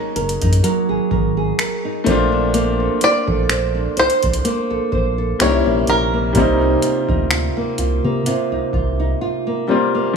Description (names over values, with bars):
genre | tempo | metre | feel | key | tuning
contemporary R&B | 63 BPM | 4/4 | swing 54% on 16ths | unclear | A4 = 441 Hz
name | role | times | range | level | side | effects
clear concert grand piano | accompaniment | 0.0-10.2 s | F3 to F4 | -21 LUFS | left 4 dB | none
flamenco guitar | arpeggios | 0.0-10.2 s | C3 to C5 | -20 LUFS | right 3 dB | tape echo
saturated sub bass | bass | 0.2-9.1 s | Gb1 to C3 | -21 LUFS | equal | none
booming analog drum machine | drums | 0.2-8.9 s | finger snaps, hi-hat, kick drum | -22 LUFS | equal | overdrive
bluegrass banjo | melody | 3.0-9.2 s | Bb4 to D5 | -20 LUFS | equal | tape echo
room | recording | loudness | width
light reverb, studio ambience | studio reverb | -15 LUFS | side -6 dB against mid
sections
0.0-10.2 A section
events
drums muted 9.2-10.2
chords
0.0 Gb69; 2.1 Bbmaj9; 5.4 C7b9; 6.3 F7sus4/C